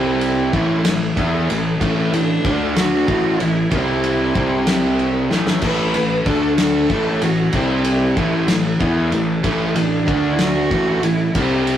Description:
quiet-loud alternative rock; 63 BPM (dotted quarters); 6/8; straight; A4 = 440 Hz
rich cello; melody; 0.0-11.8 s; C4 to B4; -23 LUFS; right 2 dB
biting overdriven guitar; riff; 0.0-11.8 s; A2 to E4; -22 LUFS; right 3 dB
distorted electric guitar; riff; 0.0-11.8 s; A2 to E4; -23 LUFS; left 5 dB; distortion
fuzz picked electric bass; bass; 0.0-11.8 s; A1 to E2; -22 LUFS; left 1 dB; overdrive
loose indie drum kit; drums; 0.2-11.8 s; crash cymbal, kick drum, ride cymbal, snare drum; -22 LUFS; left 1 dB
light reverb; rough rehearsal-room recording, warm saturation; -15 LUFS; side -10 dB against mid
0.0-11.8 A section
drum fill 5.3-5.6
0.0 C5; 0.5 A5; 2.5 D5; 3.1 A5; 3.7 C5; 5.3 A5; 6.3 D5; 6.9 A5; 7.5 C5; 8.2 A5; 10.1 D5; 10.7 A5

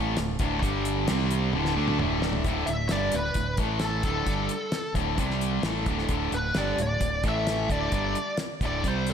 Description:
classic rock; 132 BPM; 4/4; straight; A4 = 438 Hz
crunchy overdriven guitar; riff; 0.0-9.1 s; D2 to D4; -31 LUFS; right 9 dB; slapback echo
distorted electric guitar; riff; 0.0-9.1 s; D2 to D4; -31 LUFS; left 10 dB; overdrive, slapback echo
growling fingered electric bass; bass; 0.0-9.1 s; D1 to D2; -30 LUFS; equal; overdrive
damped 70s drum kit; drums; 0.2-9.1 s; hi-hat, kick drum, snare drum, toms; -31 LUFS; equal
fuzz lead guitar; melody; 2.7-9.1 s; A4 to E5; -30 LUFS; equal; wah, distortion, slapback echo
moderate lush hall reverb, RT60 1.7 s, small room ambience; big arena sound; -24 LUFS; side -8 dB against mid
0.0-2.5 A section; 2.5-9.1 B section
drum fill 1.5-2.5
0.0 D5; 0.6 G5; 1.1 C5; 1.5 D5; 3.6 A5; 4.1 D5; 5.2 C5; 5.6 D5; 7.2 A5; 7.7 D5

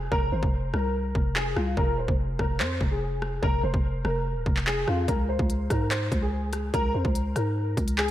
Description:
hip hop, drill; 145 BPM; 4/4; half-time; F minor; A4 = 440 Hz
dark upright piano; melody; 0.0-8.1 s; F4 to C5; -30 LUFS; left 1 dB; ensemble chorus, low-pass filter, tape echo
growling 808-style bass; bass; 0.0-8.1 s; Eb1 to Ab2; -28 LUFS; equal
drill drum kit; drums; 0.1-8.1 s; handclaps, hi-hat, kick drum, rim click; -28 LUFS; equal
light reverb; -24 LUFS; side -13 dB against mid
0.0-8.1 A section
break 0.0-5.1
0.0 F5; 5.1 Db5

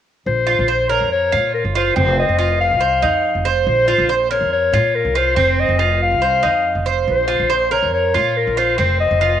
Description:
latin, Cuban son and guajira; 141 BPM; 4/4; straight; Bb minor; A4 = 440 Hz
warm clarinet; melody; 0.3-9.4 s; Bb4 to F5; -17 LUFS; left 5 dB; tape echo
upright bass; bass; 0.3-9.4 s; F1 to Bb2; -21 LUFS; equal
Cuban tres; arpeggios; 0.5-9.4 s; C4 to C5; -18 LUFS; right 8 dB; cassette tape
moderate spring reverb, RT60 2.6 s; home recording on cassette; -14 LUFS; side -10 dB against mid
0.3-9.4 A section
0.3 Bbmadd9; 2.0 F5; 3.7 Bbmadd9; 5.4 F5; 7.1 Bbmadd9; 8.8 F5

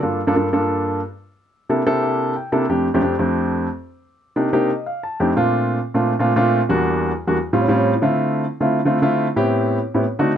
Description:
jazz; 180 BPM; 4/4; straight; F major; A4 = 440 Hz
warm grand piano; solo; 0.0-10.4 s; E2 to A5; -17 LUFS; equal
light reverb; dark, warm production, nothing above 10.8 kHz; -17 LUFS; side -9 dB against mid
0.0-5.4 A section; 5.4-10.4 B section
grand piano fill 1.7-2.7, 4.4-5.4, 10.0-10.4
0.0 Gm7; 1.4 C13; 2.7 F6; 4.0 Cm7; 4.7 F13; 5.4 Bbmaj7; 6.7 Em7b5; 7.4 A7alt; 8.0 Dm9; 9.4 Am9

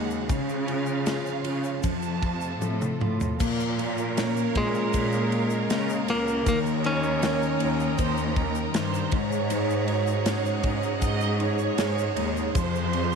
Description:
pop ballad; 79 BPM; 4/4; straight; Bb minor; A4 = 440 Hz
warm studio violin section; second line; 0.0-13.2 s; A4 to A5; -32 LUFS; right 15 dB
tine electric piano; accompaniment; 0.0-13.2 s; Db3 to Db5; -32 LUFS; left 16 dB; phaser
clear studio string section; sustained chords; 0.0-13.2 s; C3 to C6; -35 LUFS; left 1 dB
picked steel-string acoustic guitar; arpeggios; 0.0-13.2 s; Ab2 to Bb4; -32 LUFS; right 12 dB; slapback echo
muted symphonic cello section; bass; 0.0-13.2 s; Db2 to Db3; -29 LUFS; left 1 dB
tube shaker; percussion; 0.1-13.2 s; -44 LUFS; left 20 dB
modern studio drum kit; drums; 0.3-13.1 s; crash cymbal, kick drum, ride cymbal, snare drum, toms; -31 LUFS; left 1 dB
direct-recorded clean electric guitar; melody; 4.6-8.0 s; Ab3 to Db4; -27 LUFS; left 1 dB; slapback echo
light reverb, small room ambience; 1960s-style stereo with parts hard left and right; -23 LUFS; side -6 dB against mid
0.0-3.4 A section; 3.4-13.2 A section
drum fill 2.6-3.4
0.3 Db; 1.8 F; 3.4 Bbm; 6.5 Eb7; 9.1 Ab7sus4; 12.6 Fm

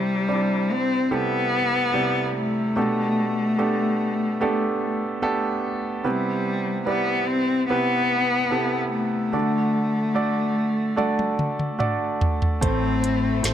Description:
pop ballad; 73 BPM; 4/4; straight; A4 = 440 Hz
warm cello; melody; 0.0-13.5 s; G3 to C4; -23 LUFS; left 2 dB
warm concert grand piano; accompaniment; 0.0-13.5 s; A2 to D5; -25 LUFS; right 3 dB
smooth R&B drum kit; drums; 11.0-13.5 s; hi-hat, kick drum, snare drum, toms; -24 LUFS; equal
bright studio cello section; second line; 12.6-13.5 s; A2 to A3; -29 LUFS; left 7 dB
clean electric guitar; arpeggios; 12.6-13.5 s; A2 to E4; -33 LUFS; left 6 dB; lush chorus
vintage muted fingered electric bass; bass; 12.6-13.5 s; A1; -25 LUFS; left 1 dB
small room reverb; -20 LUFS; side -10 dB against mid
0.0-13.5 A section
drum fill 11.0-12.6
0.0 C; 2.8 Gadd9/B; 6.1 Cmaj7; 9.3 D; 12.6 Am

